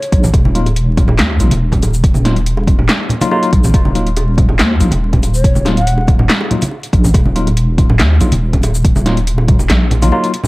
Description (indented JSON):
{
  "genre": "deep dubstep",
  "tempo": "141 BPM",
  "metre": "4/4",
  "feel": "half-time",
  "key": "Eb minor",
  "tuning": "A4 = 440 Hz",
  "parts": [
    { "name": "mellow long shakuhachi", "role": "melody", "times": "0.0-0.2, 5.3-6.1 s", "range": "Db5 to Gb5", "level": "-23 LUFS", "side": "equal", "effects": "dub echo" },
    { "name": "deep house drum kit", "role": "drums", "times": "0.0-10.5 s", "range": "handclaps, hi-hat, shaker, snare drum", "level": "-18 LUFS", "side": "equal", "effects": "overdrive" },
    { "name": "deep soft wobble bass", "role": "bass", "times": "0.1-10.1 s", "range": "Eb1 to Eb2", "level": "-13 LUFS", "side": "equal", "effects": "chorus, tube saturation" },
    { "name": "electronic kick drum", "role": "drums", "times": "0.1-9.6 s", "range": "none", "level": "-12 LUFS", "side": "equal", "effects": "overdrive" },
    { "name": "congas and bongos", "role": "percussion", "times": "0.2-10.5 s", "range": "none", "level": "-19 LUFS", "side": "right 1 dB", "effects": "none" },
    { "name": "tine electric piano", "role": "stabs", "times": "0.5-10.3 s", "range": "Gb3 to F4", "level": "-19 LUFS", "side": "left 2 dB", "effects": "medium stereo tremolo, dub echo" }
  ],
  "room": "little or no reverb",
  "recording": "vinyl crackle",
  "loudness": "-10 LUFS",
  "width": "side -21 dB against mid",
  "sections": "0.0-10.5 A section",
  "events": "kick drops out 9.7-10.5",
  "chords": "0.0 Ebmadd9"
}